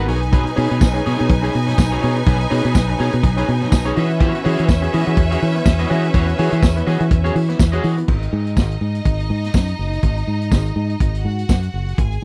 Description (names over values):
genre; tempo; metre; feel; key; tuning
disco; 124 BPM; 4/4; swing 56% on 16ths; G# minor; A4 = 439 Hz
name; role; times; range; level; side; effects
bright studio string section; second line; 0.0-12.2 s; C#4 to G#5; -27 LUFS; equal; none
clear baby grand piano; accompaniment; 0.0-8.1 s; B2 to G#4; -27 LUFS; equal; none
electric guitar at the edge of break-up; accompaniment; 0.0-8.0 s; D#4 to D#5; -30 LUFS; equal; spring reverb
fingered electric bass; bass; 0.0-12.2 s; F#1 to E3; -21 LUFS; equal; none
vintage drum kit; drums; 0.1-12.2 s; crash cymbal, hi-hat, kick drum, snare drum; -19 LUFS; equal; none
tambourine; percussion; 0.8-11.6 s; none; -37 LUFS; equal; none
room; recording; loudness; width
little or no reverb; dry, close 1970s-style studio recording; -18 LUFS; mono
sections
0.0-8.1 A section; 8.1-12.2 B section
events
none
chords
0.1 B6; 4.0 E69; 8.1 G#5